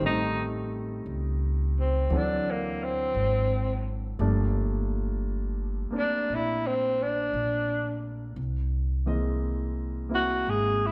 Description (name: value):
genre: jazz ballad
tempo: 58 BPM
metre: 4/4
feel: swing 66% on 8ths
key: unclear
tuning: A4 = 438 Hz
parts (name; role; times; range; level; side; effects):
- warm concert grand piano; accompaniment; 0.0-10.9 s; Eb3 to D#5; -35 LUFS; equal; none
- upright bass; bass; 0.0-10.9 s; G1 to D2; -32 LUFS; equal; none
- breathy tenor saxophone; melody; 0.1-10.9 s; Bb3 to G#4; -30 LUFS; equal; none
room: moderate recital hall reverb, RT60 1.5 s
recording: recorded in a church or concert hall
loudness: -28 LUFS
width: mono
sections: 0.0-10.9 A section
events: tenor saxophone solo 0.0-10.9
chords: 0.0 Am7b5; 2.1 D7; 4.2 Gm7; 8.4 C7alt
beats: | 0.02 1.07 2.11 3.16 | 4.20 5.25 6.29 7.33 | 8.37 9.42 10.47